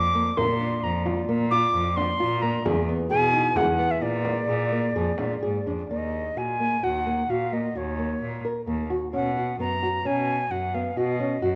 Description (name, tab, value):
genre	contemporary instrumental, chamber music in an uneven meter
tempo	130 BPM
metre	7/4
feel	straight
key	Eb minor from 5.9 s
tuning	A4 = 441 Hz
part	breathy bright concert flute	melody	0.0-11.6 s	Db5 to D6	-28 LUFS	equal	none
part	glass harmonica	sustained chords	0.0-5.9 s	Bb3 to D5	-36 LUFS	equal	none
part	bright cello	bass	0.0-11.6 s	Eb2 to B2	-32 LUFS	equal	none
part	nylon-string guitar	arpeggios	0.1-11.6 s	Bb3 to Bb4	-30 LUFS	equal	none
part	frame drum	percussion	0.1-5.5 s	none	-36 LUFS	equal	none
room	moderate concert hall reverb, RT60 2.3 s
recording	worn, warbling old tape, cassette tape, warbly pitch drift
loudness	-25 LUFS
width	mono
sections	0.0-5.9 A section; 5.9-11.6 B section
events	none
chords	0.0 Bb; 2.7 E; 4.0 Bb7; 5.9 Ebm; 9.1 Bsus2